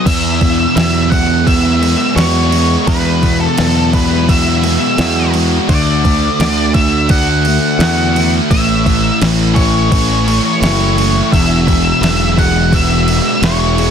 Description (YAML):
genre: rock, shoegaze and dream pop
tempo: 85 BPM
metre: 4/4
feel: straight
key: E mixolydian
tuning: A4 = 444 Hz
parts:
  - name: octave-fuzz lead guitar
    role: melody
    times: 0.0-13.9 s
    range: A4 to F#5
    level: -18 LUFS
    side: left 1 dB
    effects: distortion, slapback echo
  - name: thick fuzz guitar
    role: riff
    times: 0.0-13.9 s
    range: E2 to F#4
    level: -15 LUFS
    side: equal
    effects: distortion, wide subtle chorus
  - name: modern bright fingered electric bass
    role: bass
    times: 0.1-13.9 s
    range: E1 to E2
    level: -15 LUFS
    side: equal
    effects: none
  - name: crisp 8-bit digital drum machine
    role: drums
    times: 0.1-13.9 s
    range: crash cymbal, kick drum, snare drum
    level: -16 LUFS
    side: right 1 dB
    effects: overdrive
room: digital ambience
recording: dense, heavily limited modern master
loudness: -10 LUFS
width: side -8 dB against mid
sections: 0.1-13.9 A section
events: none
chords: 0.1 Eadd9; 5.7 D; 8.5 A; 11.3 Eadd9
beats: | 0.07 0.77 1.48 2.18 | 2.88 3.59 4.29 4.99 | 5.70 6.40 7.10 7.80 | 8.51 9.21 9.91 10.62 | 11.32 12.02 12.72 13.43